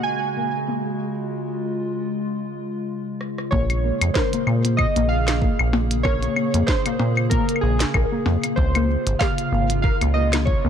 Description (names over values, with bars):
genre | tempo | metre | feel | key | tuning
IDM | 95 BPM | 4/4 | swing 56% on 16ths | Bb minor | A4 = 440 Hz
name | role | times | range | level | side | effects
warbly lo-fi synth keys | melody | 0.0-10.7 s | Ab4 to Ab5 | -26 LUFS | right 3 dB | chorus, digital delay
warbly tape-like pad | sustained chords | 0.0-10.7 s | C3 to Ab4 | -27 LUFS | equal | chorus, built-in reverb, sidechain pumping
flickering grainy texture | texture | 0.7-1.0 s | Ab4 to Ab5 | -44 LUFS | right 5 dB | none
warbly dusty pluck | arpeggios | 0.4-10.7 s | Bb3 to Bb4 | -27 LUFS | left 4 dB | ensemble chorus, vintage 12-bit sampler grit, ping-pong delay
glitchy drum kit | drums | 3.2-10.4 s | cabasa, claves, hi-hat, percussion blips, rim click, snare drum | -26 LUFS | left 2 dB | none
deep acid bass | bass | 3.5-10.7 s | Ab1 to Bb2 | -21 LUFS | equal | tube saturation
electronic kick drum | drums | 3.5-10.6 s | none | -23 LUFS | equal | none
room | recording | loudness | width
light reverb | dark, warm production | -19 LUFS | side -8 dB against mid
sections
0.0-3.5 A section; 3.5-10.7 B section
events
break 1.0-3.5; drum fill 3.2-3.5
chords
0.0 Ab7sus4; 3.5 Bbm7; 8.6 Dbmaj7